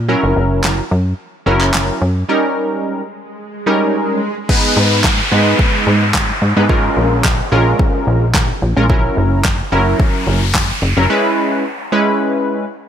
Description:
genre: dance-pop.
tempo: 109 BPM.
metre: 4/4.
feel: straight.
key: G# minor.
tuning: A4 = 440 Hz.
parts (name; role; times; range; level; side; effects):
plucky analog bass; bass; 0.0-11.1 s; F#1 to A#2; -16 LUFS; equal; sidechain pumping.
funky polysynth comp; accompaniment; 0.1-12.7 s; F#3 to B4; -16 LUFS; equal; chorus, sidechain pumping.
deep house drum kit; drums; 0.6-10.7 s; crash cymbal, handclaps, kick drum, snare drum; -16 LUFS; equal; none.
swell, downlifter and noise sweep; sound effects; 3.0-12.2 s; none; -20 LUFS; equal; none.
room: light reverb.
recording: none.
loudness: -12 LUFS.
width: side -9 dB against mid.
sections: 0.0-4.5 A section; 4.5-12.9 B section.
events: break 2.3-4.5, 11.1-12.9; swell 3.0-4.5; noise sweep 9.0-12.9.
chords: 0.1 F#7; 2.3 D#7; 4.5 G#m; 6.7 A#m7; 8.9 F#7; 11.1 E6.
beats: | 0.09 0.64 1.19 1.74 | 2.29 2.84 3.39 3.94 | 4.49 5.04 5.59 6.14 | 6.69 7.25 7.79 8.35 | 8.90 9.45 10.00 10.55 | 11.10 11.65 12.20.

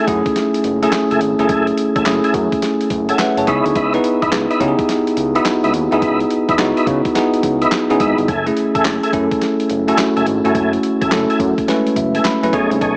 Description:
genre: R&B, new jack swing.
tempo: 106 BPM.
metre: 4/4.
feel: swing 65% on 16ths.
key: F# dorian.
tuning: A4 = 440 Hz.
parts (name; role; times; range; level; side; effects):
bell-like tine electric piano; accompaniment; 0.0-13.0 s; G#3 to C#6; -18 LUFS; equal; none.
tonewheel organ; stabs; 0.0-13.0 s; A3 to B4; -24 LUFS; equal; chorus vibrato, slow rotary speaker, digital delay.
fat analog bass; bass; 0.1-13.0 s; F#1 to C#3; -26 LUFS; equal; none.
dusty soul sampler-style drum kit; drums; 0.1-13.0 s; handclaps, hi-hat, kick drum, snare drum; -26 LUFS; equal; none.
room: moderate plate reverb, RT60 2.8 s.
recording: small speaker sound.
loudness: -16 LUFS.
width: mono.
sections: 0.0-13.0 A section.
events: tine electric piano fill 2.9-3.8, 11.7-12.8.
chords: 0.0 F#m9; 3.5 C#m9; 8.3 F#m9.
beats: 0.36 0.93 | 1.49 2.06 2.62 3.19 | 3.75 4.32 4.89 5.45 | 6.02 6.58 7.15 7.72 | 8.28 8.85 9.41 9.98 | 10.55 11.11 11.68 12.25 | 12.81.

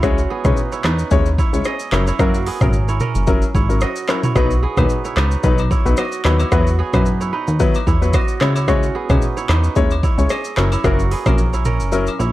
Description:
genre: afrobeats.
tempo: 111 BPM.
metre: 4/4.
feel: swing 55% on 16ths.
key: unclear.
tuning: A4 = 442 Hz.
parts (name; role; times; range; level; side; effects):
warm grand piano; accompaniment; 0.0-12.1 s; F#3 to C#5; -22 LUFS; left 4 dB; none.
kora; riff; 0.0-12.3 s; A#3 to D#5; -24 LUFS; right 6 dB; analog delay.
plucky analog bass; bass; 0.0-12.3 s; F#1 to F#2; -18 LUFS; equal; none.
afro-pop drum kit; drums; 0.0-12.3 s; handclaps, hi-hat, kick drum, rim click, shaker, toms; -19 LUFS; equal; overdrive.
agogo bells; percussion; 4.8-12.2 s; none; -32 LUFS; left 8 dB; none.
room: little or no reverb.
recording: none.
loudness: -15 LUFS.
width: side -16 dB against mid.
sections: 0.0-12.3 A section.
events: kick muted 11.9-12.3.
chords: 0.0 C#m; 1.9 F#7; 4.4 B; 6.5 Esus2; 8.4 C#m; 10.6 F#7.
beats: | 0.03 0.57 1.11 1.65 | 2.19 2.73 3.27 3.82 | 4.36 4.90 5.44 5.98 | 6.52 7.06 7.60 8.14 | 8.68 9.22 9.76 10.30 | 10.84 11.38 11.92.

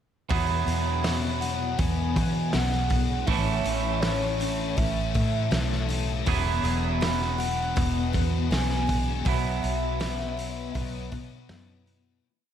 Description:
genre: rock, shoegaze and dream pop.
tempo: 80 BPM.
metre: 4/4.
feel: straight.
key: E major.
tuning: A4 = 441 Hz.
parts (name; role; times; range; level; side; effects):
picked twelve-string acoustic guitar; arpeggios; 0.3-12.2 s; F#3 to A4; -39 LUFS; left 11 dB; lush chorus, analog delay.
thick fuzz guitar; riff; 0.3-12.2 s; E2 to B3; -31 LUFS; left 8 dB; distortion, ensemble chorus.
twangy electric guitar; riff; 0.3-12.2 s; A2 to A4; -31 LUFS; right 10 dB; reverse reverb.
vintage muted fingered electric bass; bass; 0.3-12.2 s; E1 to E3; -29 LUFS; equal; none.
loose indie drum kit; drums; 0.3-12.0 s; hi-hat, kick drum, snare drum; -30 LUFS; equal; none.
pure breathy sine lead; melody; 1.4-11.5 s; C#5 to G#5; -33 LUFS; equal; chorus, phaser, analog delay.
room: light reverb, studio reverb.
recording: none.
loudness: -24 LUFS.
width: side -9 dB against mid.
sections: 0.3-12.2 verse.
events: fade-out 9.3-12.2.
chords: 0.3 Eadd9; 3.3 A; 6.3 Eadd9; 9.3 Bsus4.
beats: | 0.30 1.05 1.79 2.54 | 3.28 4.03 4.78 5.52 | 6.27 7.02 7.77 8.51 | 9.26 10.01 10.75 11.50.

